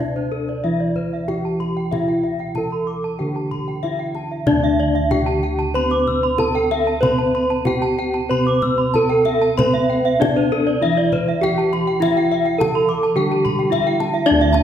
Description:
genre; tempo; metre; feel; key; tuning
Balinese gamelan; 94-111 BPM; 4/4; straight; D slendro; A4 = 440 Hz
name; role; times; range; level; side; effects
gamelan-type bronze metallophone; melody; 0.0-14.6 s; D4 to C5-45c; -20 LUFS; equal; none
gamelan-type bronze metallophone; arpeggios; 0.0-14.6 s; A4+25c to E6+30c; -24 LUFS; left 4 dB; none
gamelan-type bossed gongs; bass; 0.0-14.6 s; D2 to C5-45c; -23 LUFS; equal; none
gamelan-type bronze metallophone; arpeggios; 0.2-14.5 s; C5-45c to D6; -26 LUFS; right 4 dB; none
kendang; percussion; 0.2-14.6 s; none; -27 LUFS; left 1 dB; none
gamelan-type bronze metallophone; accompaniment; 4.5-14.6 s; D3 to C4-45c; -26 LUFS; right 3 dB; none
room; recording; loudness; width
wet recital hall reverb, RT60 1.6 s; recorded in a church or concert hall; -16 LUFS; side -9 dB against mid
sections
0.0-14.3 A section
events
none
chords
none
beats
0.00 0.64 1.28 | 1.92 2.56 3.20 3.83 | 4.47 5.11 5.75 6.39 | 7.03 7.66 8.30 8.94 | 9.58 10.21 10.83 11.43 | 12.02 12.60 13.17 13.73 | 14.27

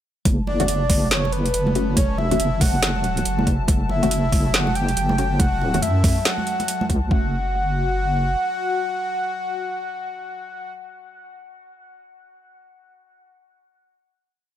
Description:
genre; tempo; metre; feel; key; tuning
deep dubstep; 140 BPM; 4/4; swing 61% on 16ths, half-time; F# minor; A4 = 439 Hz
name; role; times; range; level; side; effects
dark analog pad; sustained chords; 0.3-10.7 s; F#3 to A5; -31 LUFS; equal; chorus
deep soft wobble bass; bass; 0.3-8.4 s; F#1 to F#2; -22 LUFS; equal; chorus
electronic kick drum; drums; 0.3-7.2 s; none; -20 LUFS; equal; overdrive
garage drum kit; drums; 0.3-7.0 s; hi-hat, snare drum; -24 LUFS; right 1 dB; overdrive
congas; percussion; 0.3-7.0 s; none; -28 LUFS; right 2 dB; none
breathy flute-like synth lead; melody; 0.5-10.7 s; B4 to G5; -26 LUFS; equal; analog chorus, dub echo
filtered dub chord stab; stabs; 0.6-10.7 s; A3 to F#4; -29 LUFS; left 4 dB; phaser, wide subtle chorus, dub echo
room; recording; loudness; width
light reverb, digital ambience; none; -18 LUFS; side -11 dB against mid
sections
0.3-7.1 drop; 7.1-10.5 final chord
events
drop 0.3-7.1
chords
0.3 F#m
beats
| 0.25 0.68 1.11 1.54 | 1.97 2.40 2.83 3.25 | 3.68 4.11 4.54 4.97 | 5.40 5.83 6.25 6.68 | 7.11 7.54 7.97 8.40 | 8.82 9.25 9.68 10.11

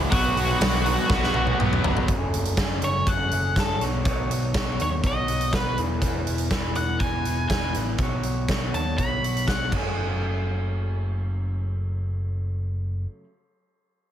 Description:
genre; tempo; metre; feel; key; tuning
quiet-loud alternative rock; 122 BPM; 4/4; straight; F# dorian; A4 = 440 Hz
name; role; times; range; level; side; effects
crunchy overdriven guitar; riff; 0.0-2.1 s; B2 to B3; -29 LUFS; right 2 dB; none
raw garage guitar; riff; 0.0-2.1 s; B2 to B3; -27 LUFS; right 1 dB; overdrive
overdriven picked electric bass; bass; 0.0-13.0 s; E1 to D#2; -27 LUFS; equal; none
octave-fuzz lead guitar; melody; 0.1-9.7 s; F#4 to B5; -28 LUFS; equal; distortion
huge arena drum kit; drums; 0.1-9.8 s; crash cymbal, hi-hat, kick drum, snare drum, toms; -26 LUFS; equal; none
electric guitar through a small old amp; arpeggios; 2.1-13.3 s; F#2 to C#5; -31 LUFS; equal; spring reverb
room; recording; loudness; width
light reverb, small room ambience; heavily compressed radio sound, multiband compression; -22 LUFS; side -10 dB against mid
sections
0.0-2.1 A section; 2.1-10.0 B section; 10.0-13.9 C section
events
drum fill 1.1-2.1, 9.7; lead electric guitar solo 2.1-10.0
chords
0.1 B5; 2.1 F#madd9; 3.8 Badd9; 5.8 E; 8.0 Badd9; 9.7 F#madd9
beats
| 0.12 0.61 1.10 1.59 | 2.08 2.58 3.07 3.56 | 4.05 4.54 5.04 5.53 | 6.02 6.51 7.01 7.50 | 8.00 8.49 8.98 9.48 | 9.97 10.46 10.96 11.45 | 11.95 12.44 12.93

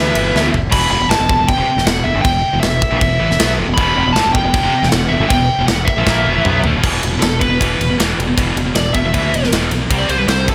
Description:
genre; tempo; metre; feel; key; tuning
heavy metal; 157 BPM; 4/4; straight; E minor; A4 = 440 Hz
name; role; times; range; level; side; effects
bluesy overdriven lead guitar; melody; 0.0-10.5 s; A4 to B5; -20 LUFS; equal; distortion, delay
high-gain lead guitar; second line; 0.0-0.5 s; B4; -24 LUFS; equal; distortion
heavy high-gain guitar; riff; 0.0-10.5 s; E2 to C4; -22 LUFS; equal; distortion
scooped high-gain guitar; riff; 0.0-0.5, 3.8-10.5 s; E2 to C4; -23 LUFS; equal; distortion
growling fingered electric bass; bass; 0.0-10.5 s; E1 to D2; -23 LUFS; equal; overdrive
tight metal drum kit; drums; 0.2-10.5 s; crash cymbal, kick drum, ride cymbal, snare drum, toms; -20 LUFS; equal; none
room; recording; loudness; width
light reverb; none; -15 LUFS; mono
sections
0.7-6.8 A section; 6.8-10.5 B section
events
drum fill 0.3-0.7, 6.1-6.8; lead electric guitar solo 6.8-10.5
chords
0.0 Em/G; 0.7 Em; 6.8 E5; 9.9 C5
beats
0.34 | 0.72 1.11 1.49 1.87 | 2.25 2.63 3.02 3.40 | 3.78 4.16 4.54 4.92 | 5.31 5.69 6.07 6.46 | 6.84 7.22 7.61 7.99 | 8.37 8.76 9.14 9.53 | 9.91 10.30

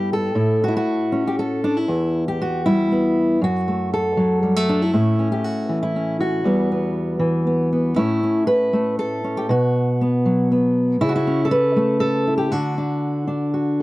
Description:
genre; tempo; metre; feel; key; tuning
folk, solo fingerstyle acoustic guitar; 118 BPM; 3/4; straight; unclear; A4 = 439 Hz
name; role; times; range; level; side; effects
fingerpicked steel-string acoustic guitar; solo; 0.0-13.8 s; E2 to B4; -18 LUFS; equal; none
room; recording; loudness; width
light reverb; dry, close 1970s-style studio recording; -18 LUFS; side -19 dB against mid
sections
0.0-8.0 A section; 8.0-13.8 B section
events
none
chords
0.4 A; 1.9 Em; 3.4 F#m; 4.9 A; 6.5 Emadd9; 8.0 A; 9.5 B5; 11.0 A/C#; 12.5 D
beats
| 0.36 0.87 1.38 | 1.89 2.40 2.91 | 3.42 3.92 4.43 | 4.94 5.44 5.95 | 6.45 6.96 7.46 | 7.97 8.48 8.99 | 9.50 10.00 10.51 | 11.01 11.51 12.02 | 12.53 13.03 13.54

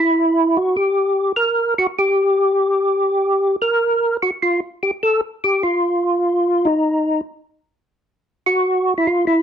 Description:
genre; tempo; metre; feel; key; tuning
jazz; 99 BPM; 4/4; swing 68% on 8ths; unclear; A4 = 440 Hz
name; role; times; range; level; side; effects
percussive tonewheel organ; solo; 0.0-9.4 s; Eb4 to Bb4; -15 LUFS; equal; chorus vibrato, slow rotary speaker
room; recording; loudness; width
light reverb; dark, warm production; -16 LUFS; side -8 dB against mid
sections
0.0-9.4 A section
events
none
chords
none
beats
0.14 0.74 1.35 | 1.96 2.57 3.18 3.79 | 4.39 5.00 5.61 6.22 | 6.83 7.43 8.04 8.65 | 9.26

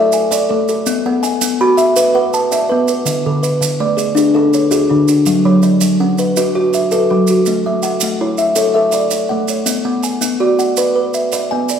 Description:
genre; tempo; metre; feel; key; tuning
southern african traditional, mbira-style interlocking cycle; 109 BPM (dotted quarters); 12/8; straight; A major; A4 = 441 Hz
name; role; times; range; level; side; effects
kalimba; arpeggios; 0.0-11.8 s; D3 to G#5; -15 LUFS; left 3 dB; none
kalimba; arpeggios; 0.0-11.8 s; D3 to B5; -16 LUFS; right 4 dB; none
maracas; percussion; 0.1-11.8 s; none; -23 LUFS; right 7 dB; none
room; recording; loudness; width
wet recital hall reverb, RT60 1.4 s; recorded in a church or concert hall; -12 LUFS; side -8 dB against mid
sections
0.0-7.5 A section; 7.5-11.8 A section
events
none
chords
0.0 A; 0.9 Bm; 3.1 D; 5.3 F#m; 7.5 A; 9.7 Bm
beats
0.31 | 0.86 1.42 1.97 2.52 | 3.07 3.62 4.17 4.72 | 5.27 5.82 6.37 6.92 | 7.47 8.02 8.57 9.12 | 9.68 10.23 10.78 11.33

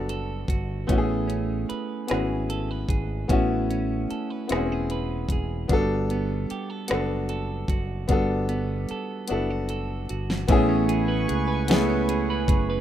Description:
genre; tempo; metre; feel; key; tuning
slow six-eight R&B; 50 BPM (dotted quarters); 6/8; straight; A major; A4 = 440 Hz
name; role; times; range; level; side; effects
clean electric guitar; second line; 0.0-12.8 s; G3 to B4; -30 LUFS; right 8 dB; none
clear grand piano; accompaniment; 0.0-12.8 s; B3 to A4; -27 LUFS; left 4 dB; none
fretless electric bass; bass; 0.0-12.8 s; E1 to C#2; -29 LUFS; equal; none
smooth R&B drum kit; drums; 0.1-12.7 s; hi-hat, kick drum, rim click, snare drum; -24 LUFS; equal; none
chorused pulse-width pad; sustained chords; 10.5-12.8 s; B4 to C#6; -31 LUFS; right 2 dB; none
room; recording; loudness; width
digital ambience; rough home demo mix; -23 LUFS; side -11 dB against mid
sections
0.0-10.5 A section; 10.5-12.8 B section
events
drum fill 9.3-10.5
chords
0.0 Gmaj9; 0.9 Amaj9; 5.7 Gmaj9; 10.5 Amaj9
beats
| 0.89 2.09 | 3.29 4.49 | 5.69 6.89 | 8.09 9.29 | 10.49 11.69

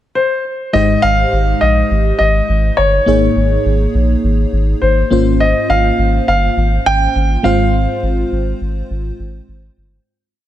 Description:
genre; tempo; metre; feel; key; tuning
1980s-style pop; 103 BPM; 4/4; straight; Ab major; A4 = 441 Hz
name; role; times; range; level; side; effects
warm baby grand piano; melody; 0.2-8.6 s; C5 to G5; -16 LUFS; equal; ping-pong delay
FM electric piano with soft pad layer; accompaniment; 0.7-10.1 s; Ab2 to Db5; -17 LUFS; left 1 dB; chorus
round analog bass; bass; 0.7-10.0 s; G1 to Bb1; -15 LUFS; equal; none
room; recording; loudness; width
light reverb, small room ambience; none; -12 LUFS; side -12 dB against mid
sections
0.0-0.7 pickup bar; 0.7-10.1 verse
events
fade-out 7.7-10.1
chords
0.0 N.C.; 0.7 Abmaj7; 3.1 Eb7sus4/Ab; 5.1 Bbmadd9/Ab; 7.4 Fm/Ab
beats
0.16 | 0.74 1.33 1.91 2.49 | 3.08 3.66 4.24 4.82 | 5.41 5.99 6.57 7.15 | 7.74 8.32 8.90 9.48

